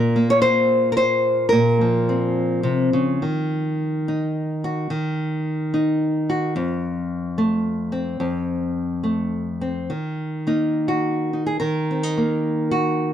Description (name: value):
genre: folk, solo fingerstyle acoustic guitar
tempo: 108 BPM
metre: 3/4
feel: rubato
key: unclear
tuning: A4 = 440 Hz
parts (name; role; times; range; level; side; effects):
- nylon-string guitar; solo; 0.0-13.1 s; F2 to Db5; -19 LUFS; equal; none
room: moderate studio reverb, RT60 0.5 s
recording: dark, warm production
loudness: -19 LUFS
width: side -10 dB against mid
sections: 0.0-3.2 A section; 3.2-9.9 B section; 9.9-13.1 C section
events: none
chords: 0.0 Bbmadd9; 3.2 Ebm; 6.6 F; 9.9 Ebm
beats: 0.43 0.98 | 1.53 2.08 2.65 | 3.22 3.79 4.36 | 4.91 5.46 6.01 | 6.55 7.10 7.64 | 8.19 8.74 9.31 | 9.89 10.46 11.04 | 11.61 12.17 12.73